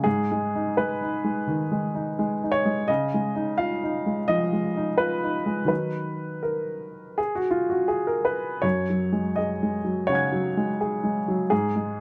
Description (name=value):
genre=neoclassical minimalist piano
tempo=84 BPM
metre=4/4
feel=rubato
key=unclear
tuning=A4 = 440 Hz
part: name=warm upright piano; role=solo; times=0.0-12.0 s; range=F#2 to G#6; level=-25 LUFS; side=equal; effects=none
room=little or no reverb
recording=close, detailed microphones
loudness=-25 LUFS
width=mono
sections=0.0-12.0 A section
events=none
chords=0.1 G#m; 2.9 C#add9; 5.7 D#m; 8.6 F#sus2